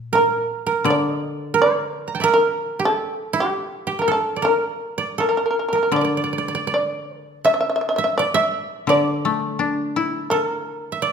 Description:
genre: japanese traditional, Japanese chamber music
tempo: 84 BPM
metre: 4/4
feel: rubato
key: unclear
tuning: A4 = 438 Hz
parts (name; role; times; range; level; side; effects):
- koto; second line; 0.0-11.1 s; G4 to Bb5; -22 LUFS; right 5 dB; none
- koto; accompaniment; 0.0-11.1 s; Bb2 to E4; -24 LUFS; left 4 dB; none
- shamisen; melody; 0.2-11.1 s; G4 to E5; -20 LUFS; left 1 dB; none
room: wet recital hall reverb, RT60 1.5 s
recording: minimal, uncompressed stereo recording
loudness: -19 LUFS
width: side -6 dB against mid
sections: 0.0-11.1 A section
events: none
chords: none

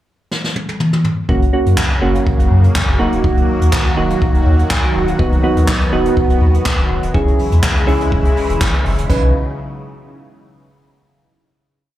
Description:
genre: dance-pop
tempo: 123 BPM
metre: 4/4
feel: straight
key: B major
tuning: A4 = 441 Hz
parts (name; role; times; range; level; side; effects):
- jazz brush drum kit; drums; 0.3-9.2 s; crash cymbal, handclaps, hi-hat, kick drum, snare drum, toms; -16 LUFS; equal; none
- soft electric-piano-like synth keys; accompaniment; 1.3-9.3 s; A#3 to B4; -18 LUFS; right 2 dB; chorus, sidechain pumping, slapback echo
- lush unison pad; sustained chords; 1.3-9.3 s; C#3 to F#4; -21 LUFS; equal; chorus, phaser, sidechain pumping
- warm sub bass; bass; 1.3-9.3 s; D1 to F#2; -15 LUFS; equal; sidechain pumping
room: little or no reverb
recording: live gig heard through the venue's PA, club reverb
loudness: -12 LUFS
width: side -13 dB against mid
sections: 0.0-1.3 pickup bar; 1.3-9.1 pre-chorus; 9.1-11.0 final chord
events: drum fill 0.3-1.3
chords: 0.0 N.C.; 1.3 F#; 3.0 D#m; 5.2 B/D#; 7.1 C#m/E; 9.1 Badd9

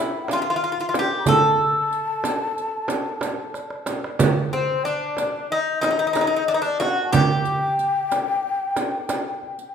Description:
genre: Turkish makam ensemble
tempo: 184 BPM (eighths)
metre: 9/8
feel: straight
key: unclear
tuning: A4 = 440 Hz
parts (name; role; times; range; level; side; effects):
- Greek bouzouki; melody; 0.0-9.7 s; C4 to A4; -23 LUFS; equal; none
- breathy mellow ney; second line; 0.0-9.7 s; C5 to B5-31c; -25 LUFS; left 4 dB; none
- darbuka; percussion; 0.3-9.5 s; none; -27 LUFS; right 4 dB; none
- frame drum; percussion; 0.3-9.2 s; none; -27 LUFS; right 3 dB; none
- riq; percussion; 0.3-9.7 s; none; -34 LUFS; right 6 dB; none
room: moderate recital hall reverb, RT60 1.3 s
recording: minimal, uncompressed stereo recording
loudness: -20 LUFS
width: side -7 dB against mid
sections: 0.0-4.2 A section; 4.2-9.7 B section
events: drum fill 3.5-4.2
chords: none

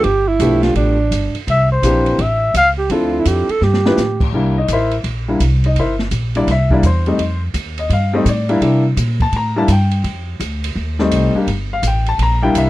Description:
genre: jazz, small-group swing and bop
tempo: 168 BPM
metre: 4/4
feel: swing 65% on 8ths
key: C mixolydian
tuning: A4 = 440 Hz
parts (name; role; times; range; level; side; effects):
- breathy alto saxophone; second line; 0.0-4.3 s; D4 to A4; -17 LUFS; right 4 dB; none
- warm upright piano; accompaniment; 0.0-12.7 s; E3 to Bb5; -17 LUFS; left 2 dB; none
- upright bass; bass; 0.0-12.7 s; G1 to C3; -17 LUFS; equal; none
- open jazz drum kit; drums; 0.0-12.7 s; crash cymbal, hi-hat, kick drum, ride cymbal, snare drum; -24 LUFS; right 1 dB; none
- breathy trumpet; melody; 1.5-2.7 s; C5 to F5; -14 LUFS; left 2 dB; none
room: little or no reverb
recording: dry, close 1970s-style studio recording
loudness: -13 LUFS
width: side -16 dB against mid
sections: 0.0-4.3 A section; 4.3-12.7 B section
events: drum fill 3.6-4.0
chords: 0.0 G7; 1.5 C7; 2.2 A; 2.9 Dm7; 3.6 G13; 4.3 C7; 7.2 F7; 8.6 C7; 10.0 F7; 11.5 C7

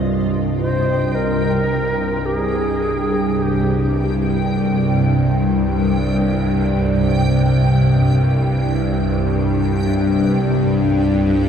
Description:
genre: dark ambient drone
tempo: free time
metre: none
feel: none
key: unclear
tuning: A4 = 439 Hz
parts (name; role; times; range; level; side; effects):
- bowed-like drone; drone; 0.0-11.5 s; C2 to G2; -16 LUFS; equal; built-in reverb, phaser
- backwards swelling texture; texture; 0.0-11.5 s; Eb5 to G5; -29 LUFS; equal; built-in reverb, analog chorus, shimmer reverb
- reedy shakuhachi; melody; 0.6-4.2 s; G4 to C5; -23 LUFS; equal; shimmer reverb, analog delay
room: wet cathedral reverb, RT60 6.6 s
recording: dreamy mix soaked in reverb, lossy compression artefacts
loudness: -15 LUFS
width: side -8 dB against mid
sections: 0.1-11.5 A section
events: fade-out on synth texture 0.1-11.5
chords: 0.1 C5

